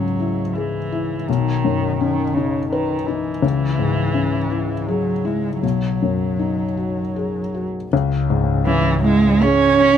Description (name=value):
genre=neoclassical piano and strings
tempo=78-84 BPM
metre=3/4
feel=rubato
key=C# minor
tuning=A4 = 440 Hz
part: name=dark cello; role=second line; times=0.0-10.0 s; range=C#3 to C#4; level=-20 LUFS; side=right 4 dB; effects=none
part: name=felt-muted upright piano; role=accompaniment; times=0.0-10.0 s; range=B1 to B4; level=-20 LUFS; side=left 5 dB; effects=none
part: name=warm double bass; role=bass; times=7.9-10.0 s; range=C#2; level=-22 LUFS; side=equal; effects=none
room=light reverb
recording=none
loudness=-17 LUFS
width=side -9 dB against mid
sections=0.0-7.9 A section; 7.9-10.0 B section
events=none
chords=0.0 C#m; 1.3 Badd9; 3.4 C#m; 5.6 G#m7/B; 7.9 C#m